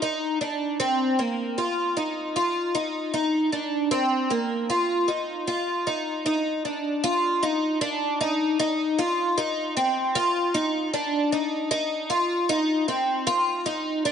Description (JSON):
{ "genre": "dream pop", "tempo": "77 BPM", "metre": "4/4", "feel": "straight", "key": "unclear", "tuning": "A4 = 440 Hz", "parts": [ { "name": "picked twelve-string acoustic guitar", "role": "solo", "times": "0.0-14.1 s", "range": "Bb3 to F4", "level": "-22 LUFS", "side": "equal", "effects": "analog chorus, analog delay" } ], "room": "moderate spring reverb, RT60 1.3 s", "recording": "echo-heavy mix, nothing above 11.0 kHz", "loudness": "-22 LUFS", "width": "side -8 dB against mid", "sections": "0.0-7.0 A section; 7.0-14.1 B section", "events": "none", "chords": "none", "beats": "0.03 | 0.80 1.58 2.36 3.14 | 3.92 4.70 5.48 6.26 | 7.04 7.82 8.60 9.38 | 10.15 10.93 11.71 12.49 | 13.27 14.05" }